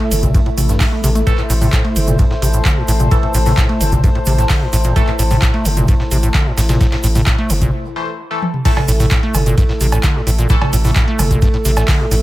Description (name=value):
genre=acid house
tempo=130 BPM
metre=4/4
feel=straight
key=A minor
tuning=A4 = 441 Hz
part: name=warm analog pad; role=sustained chords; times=0.0-12.2 s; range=A3 to C5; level=-24 LUFS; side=left 1 dB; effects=chorus, sidechain pumping
part: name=acid bass, square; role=riff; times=0.0-12.2 s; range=A1 to A3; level=-19 LUFS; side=equal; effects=tube saturation, vintage 12-bit sampler grit, dub echo
part: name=dusty soul sampler-style drum kit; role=drums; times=0.0-12.2 s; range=hi-hat, ride cymbal, snare drum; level=-32 LUFS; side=right 2 dB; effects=sidechain pumping on cymbals, high-pass filter on cymbals, high-pass filter on snare, sidechain pumping on hats, high-pass filter on hats, dub echo
part: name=warbly tape-like pad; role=texture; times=0.0-7.8 s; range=E4 to A5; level=-26 LUFS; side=left 2 dB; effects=chorus, built-in reverb, sidechain pumping
part: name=round analog bass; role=bass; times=0.1-12.2 s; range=G1 to A1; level=-16 LUFS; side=equal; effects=sidechain pumping
part: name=booming analog drum machine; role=drums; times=0.1-12.2 s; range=cowbell, crash cymbal, handclaps, hi-hat, toms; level=-21 LUFS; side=equal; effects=overdrive
part: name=egg shaker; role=percussion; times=0.1-12.2 s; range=none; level=-27 LUFS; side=right 4 dB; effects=none
part: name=electronic kick drum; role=drums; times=0.2-12.0 s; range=none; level=-16 LUFS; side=equal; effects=overdrive
part: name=band-passed chord stab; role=stabs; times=1.3-5.1, 8.0-10.7 s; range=E3 to C5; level=-26 LUFS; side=left 2 dB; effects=phaser, dub echo
room=light reverb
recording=echo-heavy mix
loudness=-12 LUFS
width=side -16 dB against mid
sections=0.0-8.7 A section; 8.7-12.2 B section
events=break 7.7-8.7; drum fill 8.4; drop 8.7-12.2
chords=0.0 A5